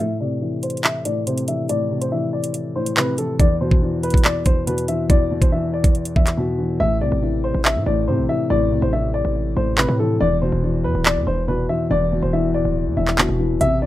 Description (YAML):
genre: hip hop, drill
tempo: 141 BPM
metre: 4/4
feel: half-time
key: A minor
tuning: A4 = 439 Hz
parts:
  - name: dark upright piano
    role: melody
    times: 0.0-13.9 s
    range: A4 to E5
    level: -24 LUFS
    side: left 2 dB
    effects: low-pass filter
  - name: dark concert grand piano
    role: accompaniment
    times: 0.0-13.9 s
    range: E2 to E3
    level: -21 LUFS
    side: left 1 dB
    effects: low-pass filter
  - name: drill drum kit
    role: drums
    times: 0.6-13.7 s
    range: handclaps, hi-hat, kick drum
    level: -17 LUFS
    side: right 1 dB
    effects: none
  - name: hard-hitting 808-style bass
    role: bass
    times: 6.8-13.9 s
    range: D1 to A2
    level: -23 LUFS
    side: right 1 dB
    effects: none
room: light reverb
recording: rough home demo mix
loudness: -17 LUFS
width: side -14 dB against mid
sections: 0.0-6.8 A section; 6.8-13.9 B section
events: filter sweep 0.0-6.8; break 6.4-6.8; hi-hats muted 6.8-13.6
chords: 0.0 Am; 3.4 E5; 6.8 Am; 10.2 E5